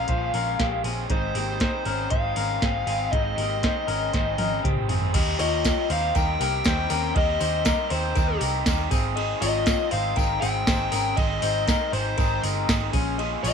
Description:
jangly indie pop; 119 BPM; 4/4; straight; Eb mixolydian; A4 = 440 Hz
fuzz lead guitar; melody; 0.0-13.5 s; C5 to G5; -27 LUFS; left 3 dB; distortion, slapback echo
raw garage guitar; accompaniment; 0.0-13.5 s; Ab2 to Bb4; -31 LUFS; right 16 dB; overdrive
electric guitar through a small old amp; arpeggios; 0.0-13.5 s; Ab3 to Eb5; -29 LUFS; left 13 dB; slapback echo
vintage muted picked electric bass; bass; 0.0-13.5 s; G1 to Eb2; -29 LUFS; right 1 dB
soft vintage rhythm box; drums; 0.1-13.5 s; crash cymbal, hi-hat, kick drum, ride cymbal, snare drum, toms; -26 LUFS; right 1 dB
tambourine; percussion; 5.1-13.5 s; -39 LUFS; left 18 dB
little or no reverb; 1960s-style stereo with parts hard left and right; -21 LUFS; side -6 dB against mid
0.0-5.1 A section; 5.1-13.5 B section
drum fill 4.1-5.1
0.0 Bbm7; 1.1 Ab; 5.1 Eb6; 8.9 Ab; 12.9 Bbm7
0.09 0.60 | 1.11 1.61 2.12 2.62 | 3.13 3.63 4.14 4.64 | 5.15 5.65 6.15 6.66 | 7.16 7.66 8.17 8.67 | 9.17 9.67 10.18 10.68 | 11.18 11.68 12.19 12.69 | 13.19

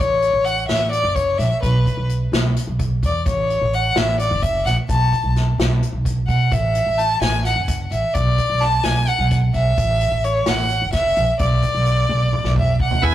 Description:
progressive instrumental, band music in an uneven meter; 258 BPM (eighths); 7/8; straight; B dorian; A4 = 442 Hz
clear violin; melody; 0.0-13.1 s; B4 to A5; -19 LUFS; equal; digital delay
upright bass; bass; 0.0-13.1 s; F#1 to B2; -20 LUFS; right 1 dB
unplugged drum kit; drums; 0.0-13.0 s; hi-hat, kick drum, snare drum, toms; -24 LUFS; left 1 dB
bright tonewheel organ; accompaniment; 13.0-13.1 s; B3 to B4; -19 LUFS; right 4 dB; slow rotary speaker
moderate small room reverb, RT60 0.6 s; rough rehearsal-room recording, tube saturation; -16 LUFS; side -12 dB against mid
0.0-13.0 A section
drum fill 12.1-13.0
0.0 A6; 1.6 Bsus4; 3.2 A6; 4.9 F#madd11/B (rootless); 6.5 A5; 8.1 Bm; 9.8 A5; 11.4 Bm
0.22 0.45 0.68 0.92 1.15 1.38 | 1.62 1.85 2.08 2.32 2.55 2.78 3.02 | 3.25 3.48 3.71 3.95 4.18 4.41 4.65 | 4.88 5.11 5.34 5.58 5.81 6.04 6.28 | 6.51 6.74 6.97 7.21 7.44 7.67 7.91 | 8.14 8.37 8.61 8.84 9.07 9.30 9.54 | 9.77 10.00 10.23 10.47 10.70 10.93 11.16 | 11.40 11.63 11.86 12.10 12.33 12.56 12.79 | 13.02

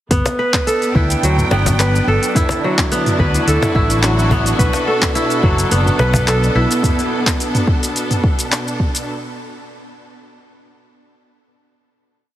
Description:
organic downtempo; 107 BPM; 4/4; straight; B minor; A4 = 440 Hz
bright studio string section; sustained chords; 0.1-9.1 s; B2 to G5; -21 LUFS; right 1 dB; sidechain pumping
kora; arpeggios; 0.1-8.1 s; F#3 to B4; -19 LUFS; equal; tape echo
fretless electric bass; bass; 0.1-6.6 s; F#1 to D2; -17 LUFS; equal; tube saturation, sidechain pumping
deep house drum kit; drums; 0.1-9.1 s; handclaps, hi-hat, shaker, toms; -21 LUFS; equal; studio reverb
electronic kick drum; drums; 0.1-8.9 s; -18 LUFS; equal; studio reverb
cajon; percussion; 0.3-6.2 s; -22 LUFS; left 2 dB
light reverb, small room ambience; heavily compressed radio sound; -13 LUFS; side -13 dB against mid
0.1-9.1 groove
0.1 G; 2.4 Dadd9; 4.6 Bm7
| 0.11 0.67 1.23 1.79 | 2.35 2.91 3.47 4.04 | 4.60 5.16 5.72 6.28 | 6.84 7.40 7.96 8.52

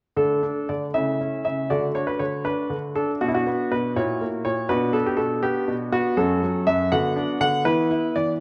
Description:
classical-period piano sonatina; 80 BPM (dotted quarters); 6/8; rubato; D major; A4 = 435 Hz
clear concert grand piano; solo; 0.2-8.4 s; F#2 to F#5; -23 LUFS; equal
moderate recital hall reverb, RT60 1.7 s; -23 LUFS; mono
0.2-8.4 A section
0.2 D5; 0.9 A/C#; 1.7 D; 3.2 Bm; 4.0 F#7/A#; 4.7 Bm; 6.2 F#m; 6.9 Bm/D; 7.7 E5
| 0.18 0.95 | 1.71 2.46 | 3.21 3.96 | 4.70 5.44 | 6.18 6.92 | 7.66

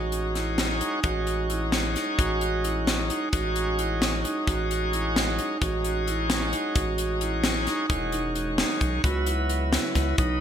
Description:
progressive instrumental, band music in an uneven meter; 262 BPM (eighths); 5/8; straight; A4 = 439 Hz
bright tonewheel organ; accompaniment; 0.0-10.4 s; C#3 to F#4; -29 LUFS; left 1 dB; overdrive, slow rotary speaker
vibraphone with medium hard mallets; arpeggios; 0.0-10.4 s; D#4 to F#4; -30 LUFS; right 5 dB; digital delay
round analog bass; bass; 0.0-10.4 s; E1 to C#2; -29 LUFS; equal
crisp fusion drum kit; drums; 0.1-10.3 s; hi-hat, kick drum, snare drum; -27 LUFS; left 1 dB; gated reverb
moderate plate reverb, RT60 2.0 s, small room ambience; bright 1980s-style digital production; -23 LUFS; side -9 dB against mid
0.0-7.9 A section; 7.9-10.4 B section
0.0 F#m13/A; 7.9 Emaj7; 9.0 C#m7
0.13 0.36 0.58 0.81 | 1.04 1.27 1.50 1.73 1.96 | 2.19 2.41 2.64 2.87 3.10 | 3.33 3.56 3.79 4.01 4.24 | 4.47 4.70 4.93 5.16 5.39 | 5.62 5.84 6.07 6.30 6.53 | 6.76 6.99 7.21 7.44 7.67 | 7.90 8.13 8.36 8.59 8.81 | 9.04 9.27 9.50 9.73 9.96 | 10.18

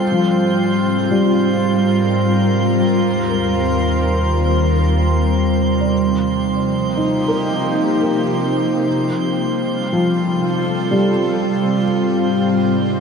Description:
ambient; free time; A4 = 441 Hz
glassy FM pad; sustained chords; 0.0-13.0 s; Eb2 to Bb4; -16 LUFS; equal; ensemble chorus, built-in reverb
felt-muted upright piano; arpeggios; 0.0-13.0 s; F3 to G5; -23 LUFS; left 1 dB; tape echo
organ-like drone; drone; 0.9-13.0 s; C3 to C4; -28 LUFS; left 1 dB; ensemble chorus, built-in reverb
drifting glass-harmonics texture; texture; 0.0-13.0 s; C5 to C6; -25 LUFS; right 2 dB; chorus, built-in reverb
wet huge ambient reverb, RT60 7.2 s; dreamy mix soaked in reverb; -15 LUFS; side -6 dB against mid
0.0-13.0 A section
fade-in on synth drone 0.0-13.0
0.0 Ab; 3.0 Ebadd9; 5.9 Cm; 8.9 Fadd9; 11.8 Ab
free time

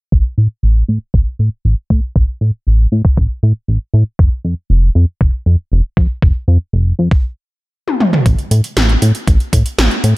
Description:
synthwave; 118 BPM; 4/4; straight; A4 = 440 Hz
chorused synth bass; bass; 0.1-10.1 s; F1 to A2; -11 LUFS; equal
electronic kick drum; drums; 0.1-9.6 s; -12 LUFS; equal; overdrive
80s electronic pad drums; drums; 7.9-10.1 s; hi-hat, snare drum, toms; -16 LUFS; equal; gated reverb on snare and toms, overdrive, low-pass filter on toms, low-pass filter on hats, low-pass filter on snare, low-pass filter on room
little or no reverb; low-pass filter; -12 LUFS; side -20 dB against mid
0.1-8.3 A section; 8.3-10.2 B section
filter sweep on analog synth bass 0.1-8.3; filter sweep 0.1-8.3; stop 7.2-8.3; drum fill 7.9-8.3
| 0.12 0.63 1.14 1.65 | 2.16 2.67 3.17 3.68 | 4.19 4.70 5.21 5.72 | 6.22 6.73 7.24 7.75 | 8.26 8.77 9.28 9.78

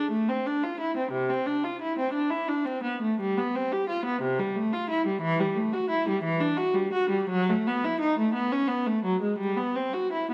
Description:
classical, baroque-style suite movement for unaccompanied viola; 58 BPM (dotted quarters); 6/8; rubato; E minor from 5.2 s; A4 = 439 Hz
warm viola; solo; 0.0-10.3 s; C3 to G4; -27 LUFS; equal
wet recital hall reverb, RT60 1.7 s; dark, warm production, vinyl crackle; -27 LUFS; mono
0.0-10.3 A section
0.10 | 1.12 2.14 | 3.20 4.22 | 5.23 6.25 | 7.33 8.38 | 9.41

